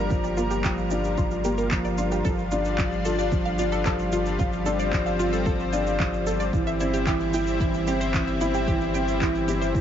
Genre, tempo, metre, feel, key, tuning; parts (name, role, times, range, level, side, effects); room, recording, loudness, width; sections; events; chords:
piano and strings electronica; 112 BPM; 4/4; straight; A4 = 444 Hz
lush unison pad; sustained chords; 0.0-9.8 s; G3 to Bb4; -29 LUFS; left 2 dB; chorus, sidechain pumping
analog pluck; arpeggios; 0.0-9.7 s; E4 to G5; -31 LUFS; equal; chorus, phaser, sidechain pumping, ping-pong delay
dark upright piano; riff; 0.0-9.8 s; E3 to F4; -26 LUFS; right 1 dB; ping-pong delay
warm sub bass; bass; 0.0-9.8 s; G1; -31 LUFS; equal; sidechain pumping
electronic kick drum; drums; 0.1-9.8 s; -28 LUFS; equal
electronic shaker and handclaps; drums; 0.1-9.8 s; -35 LUFS; right 1 dB
light reverb; nothing above 7.5 kHz; -22 LUFS; side -9 dB against mid
0.0-9.8 A section
0.0 Gm7; 2.2 Dm/G; 6.5 C/G